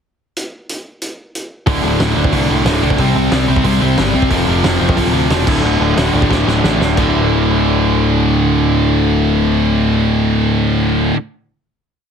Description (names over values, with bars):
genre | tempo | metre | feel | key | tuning
punk rock | 180 BPM | 4/4 | straight | D minor | A4 = 440 Hz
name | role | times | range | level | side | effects
loose indie drum kit | drums | 0.4-7.1 s | crash cymbal, hi-hat, kick drum, snare drum | -19 LUFS | right 1 dB | none
overdriven electric guitar | riff | 1.7-11.2 s | D2 to C4 | -17 LUFS | left 11 dB | none
overdriven semi-hollow guitar | riff | 1.7-11.2 s | D2 to C4 | -18 LUFS | right 12 dB | none
scooped high-gain guitar | riff | 1.7-11.2 s | D2 to C4 | -20 LUFS | right 1 dB | distortion
fuzz picked electric bass | bass | 1.7-11.1 s | D1 to D2 | -18 LUFS | right 1 dB | overdrive
room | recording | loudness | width
light reverb | heavily compressed radio sound | -12 LUFS | side -7 dB against mid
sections
0.4-1.7 pickup bar; 1.7-7.0 chorus; 7.0-9.6 final chord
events
drum fill 6.3-7.0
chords
0.4 N.C.; 1.7 D5; 3.0 C5; 4.3 F5; 5.5 D5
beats
| 0.36 0.69 1.01 1.34 | 1.67 2.00 2.33 2.66 | 2.99 3.32 3.65 3.98 | 4.31 4.64 4.97 5.31 | 5.64 5.97 6.31 6.64 | 6.98 7.31 7.64 7.98 | 8.31 8.64 8.98 9.31